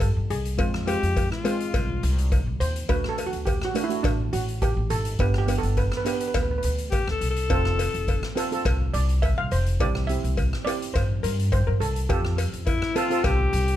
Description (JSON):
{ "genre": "calypso", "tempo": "104 BPM", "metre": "4/4", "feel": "straight", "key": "unclear", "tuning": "A4 = 440 Hz", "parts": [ { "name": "steel pan", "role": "melody", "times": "0.0-12.9 s", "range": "D4 to F5", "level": "-30 LUFS", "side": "right 2 dB", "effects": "none" }, { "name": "upright bass", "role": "bass", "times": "0.0-13.8 s", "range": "F1 to G2", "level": "-25 LUFS", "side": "equal", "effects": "none" }, { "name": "street-band drum kit", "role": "drums", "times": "0.0-13.8 s", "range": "hi-hat, kick drum, rim click", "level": "-28 LUFS", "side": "equal", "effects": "none" }, { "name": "cowbell", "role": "percussion", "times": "0.0-13.4 s", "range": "none", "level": "-31 LUFS", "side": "left 4 dB", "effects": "none" }, { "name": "steel pan", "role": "accompaniment", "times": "0.6-13.8 s", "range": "Ab3 to A4", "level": "-31 LUFS", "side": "right 4 dB", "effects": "none" }, { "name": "clear alto saxophone", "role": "second line", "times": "0.9-2.4, 6.9-8.4, 12.7-13.8 s", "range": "E4 to A4", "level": "-27 LUFS", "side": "left 4 dB", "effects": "none" } ], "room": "little or no reverb", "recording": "close, detailed microphones", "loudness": "-22 LUFS", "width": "side -12 dB against mid", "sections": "0.0-13.8 A section", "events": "steel pan solo 0.0-13.8", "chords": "0.0 C5; 0.6 Fm; 2.9 D; 5.2 G; 7.5 F; 9.8 C; 12.1 Fadd9", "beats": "0.01 | 0.58 1.16 1.74 2.31 | 2.89 3.47 4.04 4.62 | 5.20 5.77 6.35 6.92 | 7.50 8.08 8.65 9.23 | 9.80 10.37 10.95 11.52 | 12.10 12.67 13.24" }